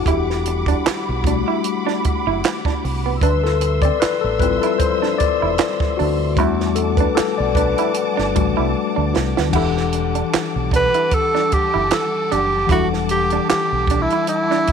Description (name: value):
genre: R&B, neo-soul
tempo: 76 BPM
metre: 4/4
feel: swing 54% on 16ths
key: E minor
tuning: A4 = 440 Hz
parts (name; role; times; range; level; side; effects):
- mellow tine electric piano; accompaniment; 0.0-14.7 s; E3 to F#5; -21 LUFS; left 11 dB; medium stereo tremolo
- warm studio string section; sustained chords; 0.0-14.7 s; G3 to E6; -27 LUFS; equal; none
- deep dub fingered electric bass; bass; 0.0-14.7 s; E1 to E2; -23 LUFS; right 1 dB; none
- electric guitar through a small old amp; second line; 0.1-14.7 s; B3 to E4; -26 LUFS; right 16 dB; none
- compact cocktail drum kit; drums; 0.1-14.7 s; crash cymbal, handclaps, hi-hat, kick drum, snare drum; -22 LUFS; right 4 dB; none
- breathy tenor saxophone; melody; 10.8-14.7 s; E4 to B4; -18 LUFS; right 1 dB; slapback echo
room: light reverb, small room ambience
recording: 1960s-style stereo with parts hard left and right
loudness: -16 LUFS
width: side -7 dB against mid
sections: 0.0-9.5 A section; 9.5-14.7 B section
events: tine electric piano solo 0.0-9.5; drum fill 8.7-9.5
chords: 0.0 Em11; 3.2 Dm11; 6.4 Em11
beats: | 0.06 0.85 1.64 2.43 | 3.22 4.01 4.80 5.58 | 6.38 7.16 7.95 8.74 | 9.53 10.32 11.11 11.90 | 12.69 13.48 14.27